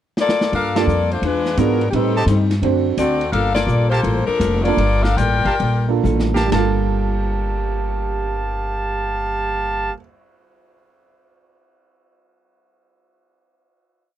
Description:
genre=jazz, big band swing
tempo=120-172 BPM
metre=4/4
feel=swing 65% on 8ths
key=G minor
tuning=A4 = 444 Hz
part: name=clear saxophone section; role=melody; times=0.2-5.9 s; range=F3 to G5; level=-19 LUFS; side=left 4 dB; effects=none
part: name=vintage drum kit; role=drums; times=0.2-6.7 s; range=hi-hat, kick drum, ride cymbal, snare drum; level=-28 LUFS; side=equal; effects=none
part: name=hollow-body jazz guitar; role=accompaniment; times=0.5-10.1 s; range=A2 to A4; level=-25 LUFS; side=left 5 dB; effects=none
part: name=upright bass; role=bass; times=0.5-9.9 s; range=F1 to A2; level=-20 LUFS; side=equal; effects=none
part: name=warm concert grand piano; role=accompaniment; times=0.8-10.0 s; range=G2 to C5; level=-23 LUFS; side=right 13 dB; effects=none
part: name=warm trumpet section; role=stabs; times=0.8-9.9 s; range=G4 to A5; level=-23 LUFS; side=right 2 dB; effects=none
room=little or no reverb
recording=none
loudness=-16 LUFS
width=side -11 dB against mid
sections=0.0-0.5 pickup bar; 0.5-6.5 A section; 6.5-10.5 final chord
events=drum fill 0.2-0.5, 6.0-6.5; band accent 0.7, 3.5; slowing down 3.3-6.5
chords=0.0 Bbmaj7; 0.5 Gm9; 1.2 E7b9; 1.9 Am7b5; 2.6 D7; 3.3 Gm9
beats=0.17 | 0.52 0.87 1.23 1.57 | 1.93 2.27 2.62 2.98 | 3.32 3.68 4.03 4.40 | 4.78 5.17 5.59 6.04 | 6.52 7.01 7.51 8.01 | 8.51 9.01 9.51 10.01

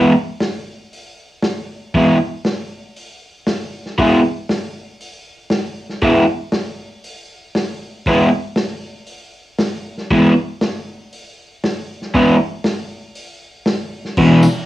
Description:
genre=garage rock duo or trio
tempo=118 BPM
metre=4/4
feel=straight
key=E major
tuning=A4 = 440 Hz
part: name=crunchy overdriven guitar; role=riff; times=0.0-14.5 s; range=E2 to E4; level=-11 LUFS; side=equal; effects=none
part: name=vintage drum kit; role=drums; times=0.4-14.6 s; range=crash cymbal, hi-hat, kick drum, snare drum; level=-22 LUFS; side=equal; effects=cassette tape
part: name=tambourine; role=percussion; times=14.4-14.6 s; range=none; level=-32 LUFS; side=right 2 dB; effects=none
room=wet studio reverb, RT60 0.5 s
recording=home recording on cassette, small room reverb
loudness=-15 LUFS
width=side -15 dB against mid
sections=0.0-14.2 A section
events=none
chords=0.0 E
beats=0.41 0.93 1.44 | 1.95 2.46 2.97 3.48 | 3.99 4.50 5.01 5.52 | 6.03 6.54 7.05 7.56 | 8.07 8.58 9.09 9.60 | 10.11 10.62 11.13 11.64 | 12.15 12.66 13.17 13.68 | 14.19

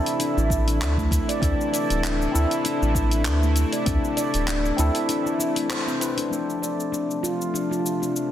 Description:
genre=organic downtempo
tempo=98 BPM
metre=4/4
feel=swing 55% on 16ths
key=D minor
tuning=A4 = 440 Hz
part: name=bright tine electric piano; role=accompaniment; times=0.0-8.3 s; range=F3 to B4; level=-30 LUFS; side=left 2 dB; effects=phaser, sidechain pumping, low-pass filter, digital delay
part: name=bowed-like drone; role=sustained chords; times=0.0-8.3 s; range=C3 to E4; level=-31 LUFS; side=left 1 dB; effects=built-in reverb, vintage 12-bit sampler grit, sidechain pumping
part: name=handpan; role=arpeggios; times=0.0-8.2 s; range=A3 to D5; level=-25 LUFS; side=equal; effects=low-pass filter, digital delay
part: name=deep house drum kit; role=drums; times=0.1-8.3 s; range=cabasa, handclaps, hi-hat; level=-30 LUFS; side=left 1 dB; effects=overdrive
part: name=warm sub bass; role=bass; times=0.4-4.9 s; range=D1 to D2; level=-22 LUFS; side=equal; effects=tube saturation, sidechain pumping
part: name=electronic kick drum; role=drums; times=0.5-4.0 s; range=none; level=-26 LUFS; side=equal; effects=overdrive
room=moderate echo chamber reverb, RT60 1.3 s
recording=dense, heavily limited modern master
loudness=-21 LUFS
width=side -11 dB against mid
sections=0.0-6.3 A section; 6.3-8.3 B section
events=band accent 5.7-6.0; filter sweep on tine electric piano 6.3-8.3; filter sweep on synth drone 6.3-8.3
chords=0.0 Am; 6.3 Dm7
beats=0.20 0.81 | 1.42 2.03 2.65 3.26 | 3.87 4.48 5.09 5.71 | 6.32 6.93 7.54 8.15

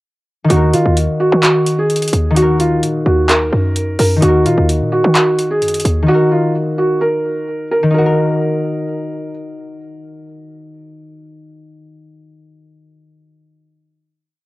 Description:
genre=hip hop, trap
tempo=129 BPM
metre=4/4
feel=half-time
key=Eb minor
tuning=A4 = 439 Hz
part: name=concert harp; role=accompaniment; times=0.4-11.7 s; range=Eb3 to Bb4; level=-17 LUFS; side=left 1 dB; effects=low-pass filter, cassette tape
part: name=felt-muted upright piano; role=melody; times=0.5-9.3 s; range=F4 to Bb4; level=-16 LUFS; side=right 1 dB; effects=low-pass filter, cassette tape, tape echo
part: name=short 808-style bass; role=bass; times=0.5-6.1 s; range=Eb2 to Eb3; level=-17 LUFS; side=equal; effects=none
part: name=booming analog drum machine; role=drums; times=0.5-6.0 s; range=handclaps, hi-hat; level=-18 LUFS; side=equal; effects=cassette tape
room=small room ambience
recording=home recording on cassette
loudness=-12 LUFS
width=side -19 dB against mid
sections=0.5-7.9 verse; 7.9-11.7 final chord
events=none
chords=0.5 Ebm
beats=| 0.50 0.97 1.43 1.90 | 2.36 2.83 3.29 3.76 | 4.22 4.69 5.15 5.62 | 6.08 6.55 7.01 7.48 | 7.94 8.41 8.87 9.34 | 9.80 10.27 10.73 11.20

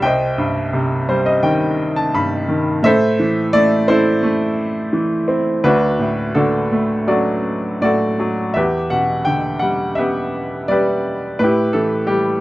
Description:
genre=classical, lyrical solo piano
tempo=85 BPM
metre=4/4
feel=rubato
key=E minor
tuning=A4 = 440 Hz
part: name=bright upright piano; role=solo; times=0.0-12.4 s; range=C2 to B5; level=-15 LUFS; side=equal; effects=none
room=little or no reverb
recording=close, detailed microphones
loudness=-15 LUFS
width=side -17 dB against mid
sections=0.0-8.6 A section; 8.6-12.4 B section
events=upright piano fill 0.7-2.8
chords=0.0 Cm; 2.8 Am; 5.6 D; 8.6 Em7; 11.4 A7(no3)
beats=| 0.03 0.74 1.45 2.15 | 2.85 3.54 4.24 4.94 | 5.64 6.36 7.08 7.83 | 8.57 9.29 10.00 10.71 | 11.41 12.10

